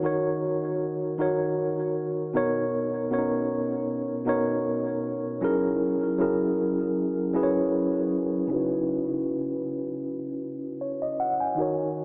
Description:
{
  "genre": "R&B",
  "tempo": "78 BPM",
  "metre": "4/4",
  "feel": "swing 54% on 16ths",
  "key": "C# dorian",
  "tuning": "A4 = 438 Hz",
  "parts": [
    { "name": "mellow tine electric piano", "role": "solo", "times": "0.0-12.0 s", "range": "B2 to G#5", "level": "-27 LUFS", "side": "equal", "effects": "low-pass filter, diffuse ambient delay" }
  ],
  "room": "wet cathedral reverb, RT60 4.5 s",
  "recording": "dreamy mix soaked in reverb, AM radio sound",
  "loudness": "-27 LUFS",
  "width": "mono",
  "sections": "0.0-8.5 A section; 8.5-12.0 B section",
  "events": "filter sweep on tine electric piano 8.5-12.0",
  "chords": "0.0 D#m7; 2.4 Bmaj7; 5.4 F#7; 8.5 C#m11",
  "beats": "0.04 0.81 1.58 | 2.35 3.12 3.89 4.66 | 5.43 6.20 6.97 7.74 | 8.51 9.28 10.04 10.81 | 11.58"
}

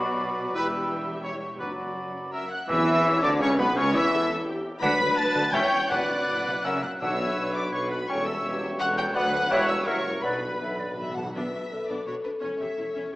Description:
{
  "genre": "classical, dramatic, fast romantic movement for symphony orchestra",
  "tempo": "159-178 BPM",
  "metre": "3/4",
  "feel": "rubato",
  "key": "B minor",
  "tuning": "A4 = 440 Hz",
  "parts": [
    { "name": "warm symphonic violin section", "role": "melody", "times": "0.0-13.2 s", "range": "B4 to B6", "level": "-34 LUFS", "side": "left 1 dB", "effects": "none" },
    { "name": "bright silver concert flute", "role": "second line", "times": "0.0-11.2 s", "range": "D5 to E6", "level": "-33 LUFS", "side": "left 1 dB", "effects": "none" },
    { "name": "dark clarinet", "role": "second line", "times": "0.0-10.4 s", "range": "B3 to D5", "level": "-32 LUFS", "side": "equal", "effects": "none" },
    { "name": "warm oboe", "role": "second line", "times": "0.0-11.0 s", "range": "B4 to B5", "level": "-31 LUFS", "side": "equal", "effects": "none" },
    { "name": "warm symphonic violin section", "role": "second line", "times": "0.0-12.9 s", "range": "A#4 to B5", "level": "-35 LUFS", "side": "left 2 dB", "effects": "none" },
    { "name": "clear bassoon", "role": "accompaniment", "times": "0.0-10.4 s", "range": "B2 to D4", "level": "-33 LUFS", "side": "equal", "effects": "none" },
    { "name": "clear symphonic viola section", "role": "accompaniment", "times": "0.0-13.2 s", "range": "B3 to D5", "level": "-34 LUFS", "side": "equal", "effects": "none" },
    { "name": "warm symphonic cello section", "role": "bass", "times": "0.0-13.0 s", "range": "D2 to E3", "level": "-36 LUFS", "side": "right 1 dB", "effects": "none" },
    { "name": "warm symphonic double bass section", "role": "bass", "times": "0.0-13.2 s", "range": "E1 to E2", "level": "-38 LUFS", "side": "right 1 dB", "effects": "none" },
    { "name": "brilliant trumpet section", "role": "stabs", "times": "0.5-11.2 s", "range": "A#4 to E5", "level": "-32 LUFS", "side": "equal", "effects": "none" },
    { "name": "dark French horn section", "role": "sustained chords", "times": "0.6-13.1 s", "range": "E3 to B4", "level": "-34 LUFS", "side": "left 2 dB", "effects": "none" },
    { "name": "timpani", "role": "percussion", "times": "1.6-3.2, 5.9-7.5, 10.2-11.9 s", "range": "F#2 to B2", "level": "-42 LUFS", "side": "equal", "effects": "none" },
    { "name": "warm tuba", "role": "bass", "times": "2.7-11.3 s", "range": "E1 to E2", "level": "-33 LUFS", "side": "right 1 dB", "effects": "none" },
    { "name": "tam-tam", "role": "percussion", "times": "2.7-4.1 s", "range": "none", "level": "-40 LUFS", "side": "left 1 dB", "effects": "none" }
  ],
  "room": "wet recital hall reverb, RT60 1.4 s",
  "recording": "small speaker sound",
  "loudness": "-23 LUFS",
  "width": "side -18 dB against mid",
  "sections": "0.0-2.7 A section; 2.7-11.4 B section; 11.4-13.2 C section",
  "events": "band accent 2.7-3.1; timpani fill 10.2-11.4",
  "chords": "0.0 Bm; 0.6 Em; 1.2 C#dim/E; 1.6 Bm/F#; 2.3 F#; 2.7 Bm; 3.8 C#dim; 4.8 Bm/D; 5.5 C#dim/E; 5.9 Bm/F#; 6.6 F#; 7.0 Bm; 8.1 C#dim/E; 9.2 Bm/D; 9.5 C#dim/E; 9.9 F#7; 10.2 Bm; 12.4 C#m/E",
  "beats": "0.21 | 0.55 0.89 1.24 | 1.60 1.97 2.33 | 2.69 3.05 3.41 | 3.77 4.12 4.47 | 4.82 5.17 5.54 | 5.90 6.27 6.65 | 7.02 7.38 7.74 | 8.10 8.45 8.80 | 9.15 9.51 9.86 | 10.23 10.61 10.98 | 11.35 11.71 12.07 | 12.43 12.78 13.13"
}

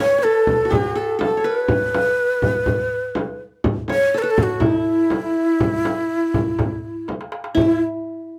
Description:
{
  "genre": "Arabic maqam ensemble",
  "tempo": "123 BPM",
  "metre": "4/4",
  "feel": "straight",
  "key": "E maqam rast",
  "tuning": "A4 = 440 Hz",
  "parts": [
    { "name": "breathy ney", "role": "melody", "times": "0.0-7.8 s", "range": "E4 to C#5", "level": "-22 LUFS", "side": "equal", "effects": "plate reverb" },
    { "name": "qanun", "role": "second line", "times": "0.0-7.8 s", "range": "E4 to C#5", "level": "-25 LUFS", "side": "equal", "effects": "none" },
    { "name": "frame drum", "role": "percussion", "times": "0.5-7.8 s", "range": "none", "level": "-26 LUFS", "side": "equal", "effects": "none" },
    { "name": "darbuka", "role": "percussion", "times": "0.7-7.8 s", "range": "none", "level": "-29 LUFS", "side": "equal", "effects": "none" }
  ],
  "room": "moderate small room reverb, RT60 0.5 s",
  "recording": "none",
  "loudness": "-20 LUFS",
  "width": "mono",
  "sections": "0.0-7.6 A section",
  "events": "drum fill 7.1-7.6",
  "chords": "none",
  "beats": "0.24 0.72 1.21 | 1.70 2.19 2.68 3.17 | 3.65 4.14 4.63 5.12 | 5.61 6.09 6.58 7.07 | 7.56"
}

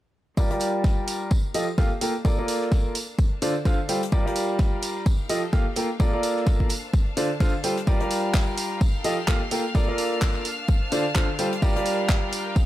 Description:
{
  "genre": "piano house",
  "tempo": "128 BPM",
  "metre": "4/4",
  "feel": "swing 58% on 16ths",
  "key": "G minor",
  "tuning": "A4 = 440 Hz",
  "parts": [
    { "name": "clear baby grand piano", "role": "riff", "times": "0.4-12.5 s", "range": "D3 to G5", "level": "-26 LUFS", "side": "equal", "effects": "sidechain pumping, low-pass filter, ping-pong delay" },
    { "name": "electronic kick drum", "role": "drums", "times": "0.4-12.7 s", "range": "none", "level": "-22 LUFS", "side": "equal", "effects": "none" },
    { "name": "warm soul drum kit", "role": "drums", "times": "0.4-12.7 s", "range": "hi-hat, snare drum, tambourine", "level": "-40 LUFS", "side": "left 2 dB", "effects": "sidechain pumping on hats, high-pass filter on hats, high-pass filter on snare, sidechain pumping on perc, high-pass filter on perc, high-pass filter on room" },
    { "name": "bright symphonic string section", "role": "texture", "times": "0.4-12.7 s", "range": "Bb3 to Bb5", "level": "-39 LUFS", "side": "left 3 dB", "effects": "sidechain pumping" },
    { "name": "house drum kit", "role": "drums", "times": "0.6-12.4 s", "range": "handclaps, hi-hat", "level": "-30 LUFS", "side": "right 2 dB", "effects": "none" },
    { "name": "clear studio violin section", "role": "sustained chords", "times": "7.9-12.7 s", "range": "F5 to F6", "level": "-34 LUFS", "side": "left 1 dB", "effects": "sidechain pumping" }
  ],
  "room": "small room ambience",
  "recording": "none",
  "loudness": "-21 LUFS",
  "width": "side -14 dB against mid",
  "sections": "0.4-12.7 A section",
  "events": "fade-in on string section 0.4-12.7",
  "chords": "0.4 Gm7; 1.3 F9; 2.0 Bbmaj7; 3.0 Dm7; 4.1 Gm7; 5.1 F9; 5.8 Bbmaj7; 6.7 Dm7; 7.9 Gm7; 8.8 F9; 9.5 Bbmaj7; 10.5 Dm7; 11.6 Gm7",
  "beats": "| 0.37 0.84 1.31 1.78 | 2.25 2.72 3.19 3.65 | 4.12 4.59 5.06 5.53 | 6.00 6.47 6.94 7.40 | 7.87 8.34 8.81 9.28 | 9.75 10.22 10.69 11.15 | 11.62 12.09 12.56"
}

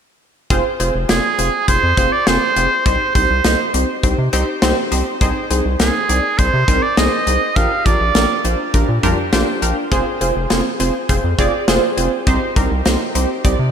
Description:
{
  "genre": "synth-pop",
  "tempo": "102 BPM",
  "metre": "4/4",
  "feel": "straight",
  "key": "unclear",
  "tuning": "A4 = 437 Hz",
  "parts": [
    { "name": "funky polysynth comp", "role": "accompaniment", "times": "0.5-13.6 s", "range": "C4 to Eb5", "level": "-19 LUFS", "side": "right 1 dB", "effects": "chorus, shimmer reverb" },
    { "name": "round analog bass", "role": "bass", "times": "0.5-13.7 s", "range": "F1 to C3", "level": "-19 LUFS", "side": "equal", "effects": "none" },
    { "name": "modern studio drum kit", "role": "drums", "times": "0.5-13.6 s", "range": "hi-hat, kick drum, snare drum, toms", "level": "-19 LUFS", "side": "left 1 dB", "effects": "gated reverb" },
    { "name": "bright oboe", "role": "melody", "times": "1.1-8.4 s", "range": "Ab4 to F5", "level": "-18 LUFS", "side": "right 3 dB", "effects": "shimmer reverb, digital delay" }
  ],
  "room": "moderate plate reverb, RT60 3.1 s",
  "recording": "bright 1980s-style digital production",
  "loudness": "-14 LUFS",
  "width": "side -8 dB against mid",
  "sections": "0.5-13.7 A section",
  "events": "none",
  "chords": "0.5 Fm; 2.9 Cm; 5.2 Ab/C; 7.6 Bb6; 9.9 Fm; 12.3 Cm",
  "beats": "| 0.51 1.09 1.68 2.27 | 2.86 3.45 4.03 4.62 | 5.21 5.80 6.39 6.97 | 7.56 8.15 8.74 9.33 | 9.92 10.51 11.09 11.68 | 12.27 12.86 13.45"
}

